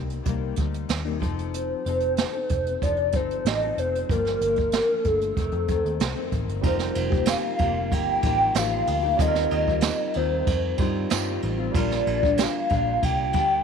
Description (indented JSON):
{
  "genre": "indie pop, bedroom pop",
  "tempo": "94 BPM",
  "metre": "4/4",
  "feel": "straight",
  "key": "unclear",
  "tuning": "A4 = 436 Hz",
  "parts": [
    { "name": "nylon-string guitar", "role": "accompaniment", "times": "0.0-13.6 s", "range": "F2 to A4", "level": "-31 LUFS", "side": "left 14 dB", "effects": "lush chorus, vibrato effect" },
    { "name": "vintage muted picked electric bass", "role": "bass", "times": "0.0-13.6 s", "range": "F1 to G2", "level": "-29 LUFS", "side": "equal", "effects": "none" },
    { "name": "jazz brush drum kit", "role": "drums", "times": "0.1-13.5 s", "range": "hi-hat, kick drum, ride cymbal, snare drum", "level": "-27 LUFS", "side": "right 3 dB", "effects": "none" },
    { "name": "hollow clarinet-like synth lead", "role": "melody", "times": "1.5-13.6 s", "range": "A4 to G5", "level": "-24 LUFS", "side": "left 1 dB", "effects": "ensemble chorus" },
    { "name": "barky tine electric piano", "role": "accompaniment", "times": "6.6-13.6 s", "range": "G3 to C5", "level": "-32 LUFS", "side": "right 14 dB", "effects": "cassette tape" },
    { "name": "tambourine", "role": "percussion", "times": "7.3-12.5 s", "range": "none", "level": "-37 LUFS", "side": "right 17 dB", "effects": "none" }
  ],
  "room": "light reverb, small room ambience",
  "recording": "1960s-style stereo with parts hard left and right",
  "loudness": "-22 LUFS",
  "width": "side -6 dB against mid",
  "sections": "0.0-6.6 A section; 6.6-13.6 B section",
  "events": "none",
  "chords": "0.0 Cm7; 1.2 F7; 4.1 Gm7; 5.4 F7; 6.6 F9sus4; 9.2 Eb69; 11.7 Bb6"
}